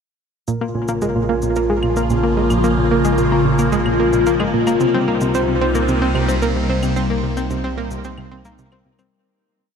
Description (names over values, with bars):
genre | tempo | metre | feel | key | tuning
ambient, sequencer-driven space music | 111 BPM | 4/4 | straight | Bb dorian | A4 = 438 Hz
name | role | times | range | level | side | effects
evolving wavetable pad | sustained chords | 0.8-9.1 s | C3 to F4 | -20 LUFS | left 1 dB | phaser, built-in reverb
concert harp | arpeggios | 0.5-9.8 s | G3 to Bb4 | -22 LUFS | moving between left 5 dB and right 3 dB | auto-pan, low-pass filter, tape echo
analog pluck | riff | 0.5-9.0 s | Bb2 to C4 | -20 LUFS | right 1 dB | chorus, tape echo
round analog bass | bass | 0.5-9.1 s | Bb1 to C2 | -24 LUFS | equal | none
shaker and claves | percussion | 0.5-9.1 s | none | -36 LUFS | equal | tape echo
room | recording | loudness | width
moderate huge ambient reverb, RT60 8.1 s | in a vast, echoing space | -15 LUFS | side -6 dB against mid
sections
0.5-9.1 A section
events
filter sweep on harp 0.5-9.1; fade-out 6.2-9.1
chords
0.5 Bbm; 4.8 Cm7